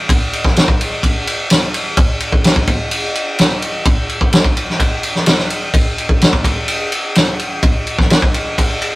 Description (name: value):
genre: rock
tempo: 127 BPM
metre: 4/4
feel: straight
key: none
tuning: none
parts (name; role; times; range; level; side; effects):
- loose indie drum kit; drums; 0.1-8.9 s; kick drum, ride cymbal, snare drum; -12 LUFS; equal; none
room: light reverb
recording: rough rehearsal-room recording, warm saturation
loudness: -12 LUFS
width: side -19 dB against mid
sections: 0.0-9.0 A section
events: none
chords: none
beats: | 0.09 0.56 1.03 1.50 | 1.97 2.44 2.91 3.38 | 3.85 4.32 4.79 5.26 | 5.74 6.21 6.68 7.15 | 7.63 8.10 8.57